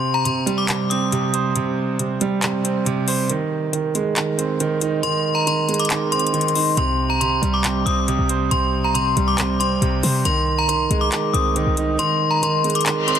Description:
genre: hip hop, trap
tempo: 138 BPM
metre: 4/4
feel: half-time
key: C minor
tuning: A4 = 440 Hz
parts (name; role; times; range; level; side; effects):
- metallic FM bell; melody; 0.0-1.5, 5.0-13.2 s; Bb5 to Eb6; -22 LUFS; left 3 dB; chorus, phaser, tape echo
- clear concert grand piano; accompaniment; 0.0-13.2 s; C3 to C5; -21 LUFS; right 4 dB; none
- trap drum kit; drums; 0.3-13.2 s; handclaps, hi-hat; -25 LUFS; left 2 dB; none
- short 808-style bass; bass; 6.8-12.0 s; C2 to C3; -23 LUFS; left 1 dB; none
- reverse cymbal; sound effects; 13.0-13.2 s; none; -22 LUFS; left 8 dB; none
room: light reverb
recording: dense, heavily limited modern master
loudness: -17 LUFS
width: side -8 dB against mid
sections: 0.0-13.2 A section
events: break 0.0-6.8; kick muted 12.0-13.2; reverse cymbal 13.0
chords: 0.0 C5; 3.3 Ab/Eb; 6.8 C5; 10.3 Cmadd9

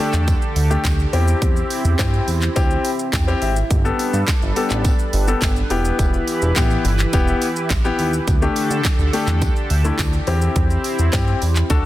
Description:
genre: dance-pop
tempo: 105 BPM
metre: 4/4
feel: straight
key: unclear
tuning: A4 = 441 Hz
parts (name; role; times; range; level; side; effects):
- warm grand piano; accompaniment; 0.0-11.9 s; A3 to G5; -23 LUFS; left 4 dB; sidechain pumping
- chorused pulse-width pad; sustained chords; 0.0-11.9 s; D3 to B4; -26 LUFS; right 1 dB; sidechain pumping
- chorused synth bass; bass; 0.1-11.9 s; E1 to D3; -19 LUFS; equal; sidechain pumping
- pop drum kit; drums; 0.1-11.8 s; handclaps, hi-hat, kick drum, shaker, snare drum; -21 LUFS; equal; none
- tambourine; percussion; 0.3-11.8 s; none; -39 LUFS; right 6 dB; none
room: little or no reverb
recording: dense, heavily limited modern master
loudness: -16 LUFS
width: side -15 dB against mid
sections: 0.0-11.9 A section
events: grand piano fill 2.8-3.7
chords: 0.0 Dsus4; 1.1 C/E; 3.7 Gadd9; 5.7 Em; 8.3 Dsus4; 10.3 C/E

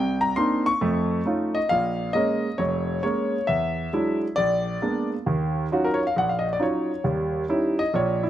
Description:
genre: solo jazz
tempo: 135 BPM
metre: 4/4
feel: swing 66% on 8ths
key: Eb minor from 5.3 s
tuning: A4 = 440 Hz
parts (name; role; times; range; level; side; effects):
- warm concert grand piano; solo; 0.0-8.3 s; E#1 to C#6; -22 LUFS; equal; slapback echo
room: little or no reverb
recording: recorded outdoors, with no room sound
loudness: -22 LUFS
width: side -12 dB against mid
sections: 0.0-5.3 A section; 5.3-8.3 B section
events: grand piano solo 5.3-8.3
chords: 0.0 Cm9; 0.8 F7b13; 1.7 A#m7; 3.5 E9; 4.4 A#7b9; 5.3 Ebm9; 7.0 Eb7b9

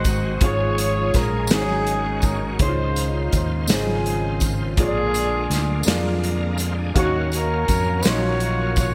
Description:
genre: slow gospel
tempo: 55 BPM (dotted quarters)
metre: 6/8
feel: straight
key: Db major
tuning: A4 = 442 Hz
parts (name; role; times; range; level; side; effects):
- mellow horn section; melody; 0.0-8.9 s; Bb3 to Db5; -27 LUFS; equal; none
- warm upright piano; accompaniment; 0.0-8.9 s; Ab2 to C6; -29 LUFS; equal; analog chorus
- bright tonewheel organ; sustained chords; 0.0-8.9 s; Db3 to F5; -34 LUFS; equal; slow rotary speaker, chorus vibrato
- fingered electric bass; bass; 0.0-8.9 s; Ab1 to F2; -27 LUFS; equal; none
- tambourine; percussion; 0.0-8.9 s; none; -35 LUFS; equal; none
- modern studio drum kit; drums; 0.1-8.9 s; hi-hat, kick drum, snare drum; -26 LUFS; equal; none
room: light reverb, small room ambience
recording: bright 1980s-style digital production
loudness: -21 LUFS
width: mono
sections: 0.0-8.9 A section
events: none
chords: 0.4 Db/Ab; 1.5 Ab7sus4; 2.6 Dbmaj9; 4.8 Bb7; 7.0 Ebm9

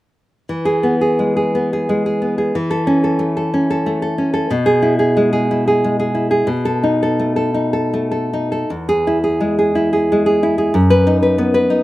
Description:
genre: romantic piece for solo classical guitar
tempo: 74-98 BPM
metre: 3/4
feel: rubato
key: E major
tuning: A4 = 439 Hz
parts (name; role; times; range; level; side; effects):
- nylon-string guitar; solo; 0.5-11.8 s; E2 to B4; -14 LUFS; equal; slapback echo
room: little or no reverb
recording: recorded outdoors, with no room sound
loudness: -14 LUFS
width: side -16 dB against mid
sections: 0.5-8.7 A section; 8.7-11.8 B section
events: none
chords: 0.5 E; 2.6 A/E; 4.5 E/B; 6.5 B7; 8.7 E; 10.7 B/F#

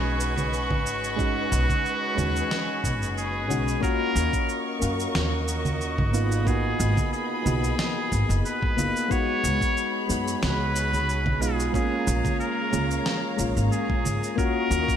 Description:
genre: sunset chillout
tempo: 91 BPM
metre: 4/4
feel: swing 53% on 16ths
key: unclear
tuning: A4 = 441 Hz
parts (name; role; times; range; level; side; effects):
- trumpet with straight mute; melody; 0.0-15.0 s; F#4 to C#5; -29 LUFS; equal; vintage 12-bit sampler grit, digital delay, shimmer reverb
- soft electric-piano-like synth keys; accompaniment; 0.0-15.0 s; G#3 to E#5; -28 LUFS; moving between left 5 dB and right 5 dB; chorus, auto-pan, shimmer reverb
- muted studio string section; sustained chords; 0.0-15.0 s; G#4 to C#6; -34 LUFS; left 1 dB; shimmer reverb
- upright bass; bass; 0.0-14.8 s; F#1 to A#2; -27 LUFS; equal; none
- drifting glass-harmonics texture; texture; 0.0-3.8, 14.4-15.0 s; B5 to C#6; -42 LUFS; right 1 dB; none
- electronic cabasa, congas and snare drum; drums; 0.2-15.0 s; none; -31 LUFS; right 2 dB; gated reverb
- electronic kick drum; drums; 0.7-15.0 s; none; -28 LUFS; equal; none
room: moderate lush hall reverb, RT60 2.6 s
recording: bright 1980s-style digital production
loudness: -22 LUFS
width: side -9 dB against mid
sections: 0.0-3.8 A section; 3.8-15.0 B section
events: kick drops out 3.2-3.8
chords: 0.0 B69; 3.8 D#m7; 6.1 G#m7; 9.1 C#7sus4; 11.7 A#m7; 14.4 D#m7

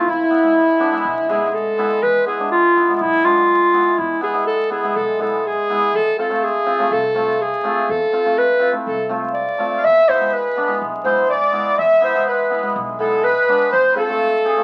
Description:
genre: klezmer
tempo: 123 BPM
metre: 4/4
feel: straight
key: E phrygian dominant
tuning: A4 = 437 Hz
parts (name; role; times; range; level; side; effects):
- warm clarinet; melody; 0.0-14.6 s; E4 to E5; -19 LUFS; equal; none
- accordion; second line; 0.0-1.5, 9.8-14.6 s; E4 to F5; -22 LUFS; equal; none
- upright bass; bass; 0.1-13.9 s; E1 to E2; -41 LUFS; equal; none
- hammered dulcimer; accompaniment; 0.3-14.6 s; G#3 to G#4; -24 LUFS; equal; none
room: wet studio reverb, RT60 0.6 s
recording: very old 78 rpm record, vinyl crackle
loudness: -17 LUFS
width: mono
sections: 0.0-2.0 A section; 2.0-14.6 A section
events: none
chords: 0.1 E; 5.9 F; 9.8 E; 13.7 F/E

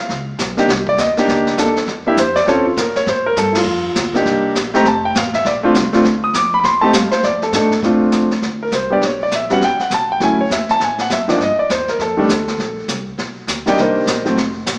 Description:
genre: jazz piano trio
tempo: 202 BPM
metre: 4/4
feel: swing 62% on 8ths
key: Bb major from 7.8 s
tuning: A4 = 441 Hz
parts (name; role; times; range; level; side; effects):
- upright bass; bass; 0.1-14.8 s; F1 to Bb2; -31 LUFS; equal; none
- jazz brush drum kit; drums; 0.1-14.8 s; brushed snare drum, hi-hat, kick drum, ride cymbal, snare drum; -24 LUFS; equal; none
- clear concert grand piano; melody; 0.6-14.4 s; Eb3 to Eb6; -17 LUFS; equal; none
room: wet recital hall reverb, RT60 1.6 s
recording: recorded in a church or concert hall, small speaker sound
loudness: -16 LUFS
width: mono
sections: 0.0-7.8 A section; 7.8-14.8 B section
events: band accent 3.5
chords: 0.1 N.C.; 0.7 Cm7; 1.9 E7(no3); 2.5 Ebsus2; 3.1 Dm; 4.3 Cm7; 4.9 F; 5.5 Bbadd9; 6.6 Am7; 7.2 F6; 7.8 Bbmaj9; 9.0 Esus2; 9.6 Asus2; 10.2 Dmaj9; 11.4 Eb; 12.0 F6; 12.6 Bbsus2; 13.2 G; 13.8 Cm9

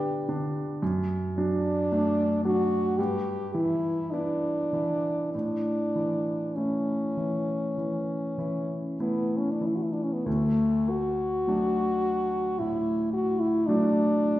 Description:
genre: classical, romantic duo for French horn and grand piano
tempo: 46-56 BPM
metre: 4/4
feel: rubato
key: D major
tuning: A4 = 442 Hz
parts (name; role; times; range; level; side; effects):
- clear French horn; melody; 0.0-14.4 s; A3 to G4; -28 LUFS; equal; none
- warm concert grand piano; accompaniment; 0.0-14.4 s; D2 to E4; -27 LUFS; equal; none
room: wet recital hall reverb, RT60 1.3 s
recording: heard from further back in the room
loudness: -25 LUFS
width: side -14 dB against mid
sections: 0.0-10.3 A section; 10.3-14.4 B section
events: none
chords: 0.0 G; 0.8 D/F#; 3.0 Em/G; 5.3 A; 10.3 D

